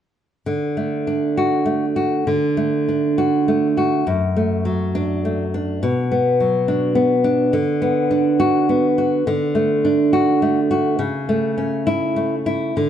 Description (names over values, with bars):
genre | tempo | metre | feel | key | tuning
romantic piece for solo classical guitar | 103 BPM | 3/4 | rubato | D major, A major from 9.3 s | A4 = 442 Hz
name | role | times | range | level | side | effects
nylon-string guitar | solo | 0.5-12.9 s | F#2 to F#4 | -16 LUFS | equal | none
room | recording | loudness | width
moderate recital hall reverb, RT60 1.5 s | dark, warm production | -16 LUFS | side -9 dB against mid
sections
0.5-2.3 A section; 2.3-12.9 B section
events
none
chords
0.5 D; 4.1 D/F#; 5.8 Bm; 7.5 Bm/D; 9.3 D; 11.0 A/C#